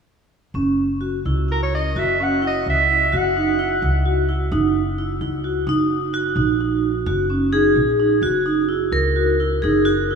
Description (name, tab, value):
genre	contemporary instrumental, chamber music in an uneven meter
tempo	258 BPM (eighths)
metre	11/8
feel	straight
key	F# mixolydian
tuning	A4 = 439 Hz
part	vibraphone with medium hard mallets	arpeggios	0.5-10.2 s	C#4 to F#4	-21 LUFS	right 3 dB	none
part	upright bass	bass	0.5-10.2 s	F#1 to C#2	-24 LUFS	equal	none
part	warm soprano saxophone	melody	1.5-4.1 s	A#4 to F#5	-21 LUFS	right 1 dB	none
part	vibraphone with hard mallets	second line	5.7-10.2 s	D#4 to A#4	-20 LUFS	left 3 dB	none
room	wet cathedral reverb, RT60 5.5 s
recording	in a vast, echoing space, small room ambience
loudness	-17 LUFS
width	side -6 dB against mid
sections	0.5-10.2 A section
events	none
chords	0.5 F#5; 5.7 D#m/F#; 8.2 F#7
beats	| 0.54 0.78 1.02 1.25 1.49 1.72 1.96 2.19 2.43 2.66 2.89 | 3.13 3.36 3.59 3.83 4.06 4.29 4.52 4.75 4.99 5.22 5.45 | 5.69 5.92 6.15 6.38 6.61 6.84 7.08 7.31 7.54 7.77 8.00 | 8.23 8.46 8.70 8.93 9.16 9.40 9.64 9.87 10.11